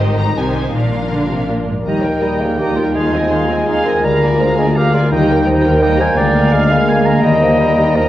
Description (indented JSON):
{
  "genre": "classical, dramatic, fast romantic movement for symphony orchestra",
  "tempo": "167 BPM",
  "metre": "3/4",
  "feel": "straight",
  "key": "Eb major",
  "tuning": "A4 = 440 Hz",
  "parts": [
    { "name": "warm symphonic violin section", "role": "melody", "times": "0.0-8.1 s", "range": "Eb5 to C6", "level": "-27 LUFS", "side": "left 3 dB", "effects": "none" },
    { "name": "warm studio violin section", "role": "second line", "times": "0.0-8.1 s", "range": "F4 to F5", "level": "-25 LUFS", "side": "equal", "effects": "none" },
    { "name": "rich symphonic viola section", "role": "accompaniment", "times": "0.0-8.1 s", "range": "Eb3 to Eb4", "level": "-23 LUFS", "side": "right 2 dB", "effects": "none" },
    { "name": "concert harp", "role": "arpeggios", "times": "0.0-8.1 s", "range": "Ab2 to Ab4", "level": "-20 LUFS", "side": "left 4 dB", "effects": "none" },
    { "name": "dark studio double bass section", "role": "bass", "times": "0.0-8.1 s", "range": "Ab1 to Eb2", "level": "-22 LUFS", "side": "right 3 dB", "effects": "none" },
    { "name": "warm symphonic cello section", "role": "bass", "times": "0.0-8.1 s", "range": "D2 to D3", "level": "-21 LUFS", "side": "right 1 dB", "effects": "none" },
    { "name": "mellow clarinet", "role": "second line", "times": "1.7-8.1 s", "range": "Eb4 to F5", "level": "-18 LUFS", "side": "equal", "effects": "none" },
    { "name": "bright oboe", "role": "second line", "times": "1.9-8.1 s", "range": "F5 to Bb5", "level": "-21 LUFS", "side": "right 1 dB", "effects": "none" },
    { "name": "mellow bassoon", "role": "accompaniment", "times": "1.9-8.1 s", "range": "Eb3 to C4", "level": "-20 LUFS", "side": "right 2 dB", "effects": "none" },
    { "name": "warm French horn section", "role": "sustained chords", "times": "1.9-8.1 s", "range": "G3 to F4", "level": "-20 LUFS", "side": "left 1 dB", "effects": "none" }
  ],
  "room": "wet recital hall reverb, RT60 1.3 s",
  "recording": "worn, warbling old tape, cassette tape, warbly pitch drift",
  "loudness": "-12 LUFS",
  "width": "side -13 dB against mid",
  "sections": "0.0-1.9 A section; 1.9-8.1 B section",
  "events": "none",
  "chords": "0.0 Abmaj7; 0.7 Bb; 1.9 Eb; 3.0 Fm7/Eb; 4.0 Bb7/D; 5.1 Eb; 6.2 Bb7/D; 7.2 Eb"
}